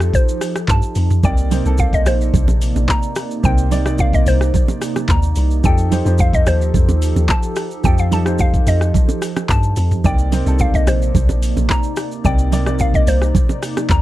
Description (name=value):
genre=amapiano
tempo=109 BPM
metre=4/4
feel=straight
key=C dorian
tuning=A4 = 440 Hz
part: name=mallet-like synth pluck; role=melody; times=0.0-14.0 s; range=C5 to Bb5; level=-23 LUFS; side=left 1 dB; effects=chorus, digital delay
part: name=clear concert grand piano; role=accompaniment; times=0.0-14.0 s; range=C3 to D5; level=-26 LUFS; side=equal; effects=none
part: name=hollow soft pad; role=sustained chords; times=0.0-14.0 s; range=C3 to D5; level=-25 LUFS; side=right 2 dB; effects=chorus, sidechain pumping
part: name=deep log drum bass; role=bass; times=0.0-14.0 s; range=Bb1 to G2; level=-16 LUFS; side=equal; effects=none
part: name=smooth R&B drum kit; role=drums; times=0.0-14.0 s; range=handclaps, hi-hat, kick drum, rim click, shaker, toms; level=-18 LUFS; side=equal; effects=none
part: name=congas and bongos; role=percussion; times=1.2-14.0 s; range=none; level=-22 LUFS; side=right 6 dB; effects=none
room=little or no reverb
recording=dark, warm production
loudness=-14 LUFS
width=side -15 dB against mid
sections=0.0-14.0 A section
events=none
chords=0.0 F9; 1.2 Cm9; 5.6 F9; 10.0 Cm9